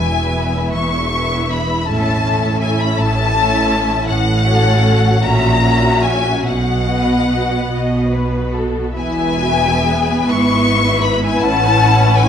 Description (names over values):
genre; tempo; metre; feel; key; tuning
classical, slow romantic movement for string orchestra; 43-55 BPM (dotted quarters); 6/8; rubato; E major; A4 = 439 Hz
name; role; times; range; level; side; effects
rich symphonic violin section; melody; 0.0-12.3 s; F#5 to C#6; -18 LUFS; left 4 dB; none
warm symphonic violin section; second line; 0.0-12.3 s; F#4 to F#5; -22 LUFS; left 3 dB; none
warm symphonic viola section; accompaniment; 0.0-12.3 s; B3 to G#4; -21 LUFS; right 2 dB; none
warm studio double bass section; bass; 0.0-12.3 s; E1 to B1; -19 LUFS; right 1 dB; none
warm symphonic cello section; bass; 0.0-12.3 s; E2 to B2; -20 LUFS; right 2 dB; none
room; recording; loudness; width
light reverb; close, detailed microphones, vinyl crackle; -13 LUFS; side -8 dB against mid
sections
0.0-12.3 A section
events
none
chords
0.0 E; 1.9 A; 4.1 F#m/A; 5.2 F#7/A#; 6.4 B; 9.0 E; 11.4 A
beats
0.72 | 1.88 2.98 | 4.08 5.23 | 6.45 7.71 | 8.97 10.28 | 11.43